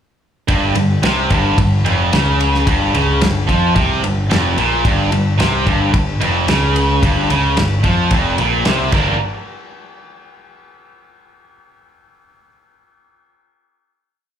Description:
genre	classic rock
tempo	110 BPM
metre	4/4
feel	straight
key	unclear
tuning	A4 = 440 Hz
part	distorted electric guitar	riff	0.5-9.2 s	F2 to D4	-20 LUFS	left 9 dB	overdrive, slapback echo
part	tight distorted guitar	riff	0.5-9.2 s	F2 to Bb4	-18 LUFS	right 8 dB	distortion, slapback echo
part	growling picked electric bass	bass	0.5-9.2 s	F1 to F2	-18 LUFS	equal	overdrive
part	damped 70s drum kit	drums	0.5-9.1 s	crash cymbal, kick drum, ride cymbal, snare drum	-19 LUFS	equal	none
room	small room ambience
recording	live gig heard through the venue's PA, club reverb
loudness	-13 LUFS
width	side -9 dB against mid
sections	0.5-9.2 riff; 9.2-11.4 final hit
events	drum fill 8.9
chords	0.5 Gm; 9.2 N.C.

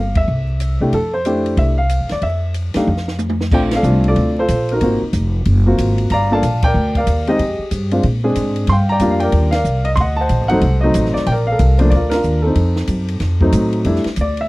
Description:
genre	jazz piano trio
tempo	186 BPM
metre	4/4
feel	swing 63% on 8ths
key	F major, Bb major from 3.5 s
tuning	A4 = 439 Hz
part	warm baby grand piano	melody	0.0-14.5 s	F3 to C6	-17 LUFS	equal	none
part	upright bass	bass	0.0-14.5 s	F1 to C3	-16 LUFS	equal	none
part	compact cocktail drum kit	drums	0.2-14.4 s	crash cymbal, hi-hat, kick drum, ride cymbal, snare drum, toms	-24 LUFS	equal	none
room	small room ambience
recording	dry, close 1970s-style studio recording, vinyl crackle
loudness	-14 LUFS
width	side -21 dB against mid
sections	0.0-3.5 A section; 3.5-13.8 B section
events	band accent 0.1, 2.7, 3.7, 6.6, 9.5, 12.1; drum fill 2.9-3.5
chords	0.3 C; 0.9 Fmaj13; 2.9 N.C.; 3.5 Bbmaj7; 4.8 Ab13; 6.1 Gm7; 7.4 Fmadd9; 8.0 Bb7; 8.7 Ebmaj9; 10.0 D7b9; 11.3 Bbmaj9; 12.6 F7b9; 13.8 Fmaj13

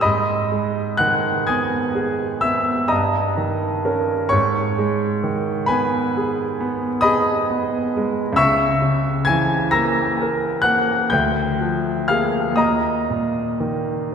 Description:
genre	classical, romantic nocturne for solo piano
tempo	43 BPM (dotted quarters)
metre	9/8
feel	uneven beats, rubato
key	G# minor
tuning	A4 = 440 Hz
part	clear grand piano	solo	0.0-14.1 s	C#2 to A#6	-17 LUFS	equal	none
room	wet church reverb, RT60 2.7 s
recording	none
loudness	-17 LUFS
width	side -7 dB against mid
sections	0.0-14.1 A section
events	none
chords	0.0 G#m; 2.9 D#7/G; 4.3 G#m; 8.4 A#dim/C#; 11.1 A#7/D; 12.6 D#5

